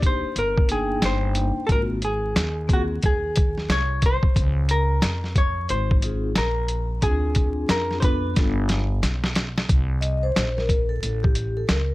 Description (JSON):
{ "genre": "hip hop, jazz-hop", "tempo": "90 BPM", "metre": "4/4", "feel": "swing 63% on 16ths", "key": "unclear", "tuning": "A4 = 441 Hz", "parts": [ { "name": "vibraphone with medium mallets", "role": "accompaniment", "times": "0.0-11.9 s", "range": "Bb3 to G5", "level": "-28 LUFS", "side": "left 2 dB", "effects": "none" }, { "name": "upright bass", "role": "bass", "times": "0.0-11.9 s", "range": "G1 to F2", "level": "-25 LUFS", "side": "equal", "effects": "none" }, { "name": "boom bap sampler-style drum kit", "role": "drums", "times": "0.0-11.9 s", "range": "hi-hat, kick drum, snare drum", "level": "-22 LUFS", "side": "equal", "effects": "none" }, { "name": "vintage hollow-body jazz guitar", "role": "melody", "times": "0.1-9.0 s", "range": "Gb4 to Db5", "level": "-26 LUFS", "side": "left 1 dB", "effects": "plate reverb" } ], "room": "little or no reverb", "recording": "vinyl crackle", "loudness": "-20 LUFS", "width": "side -18 dB against mid", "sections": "0.0-9.7 A section; 9.7-11.9 B section", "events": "drum fill 8.4-9.7; vibraphone solo 9.7-11.9", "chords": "0.0 Cm9; 1.7 Ab69; 4.4 Dbmaj7; 7.0 Dm7b5; 8.4 G7; 9.7 Bbsus24; 11.0 A", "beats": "0.36 1.02 | 1.69 2.36 3.02 3.69 | 4.36 5.03 5.69 6.36 | 7.03 7.69 8.36 9.03 | 9.69 10.36 11.03 11.69" }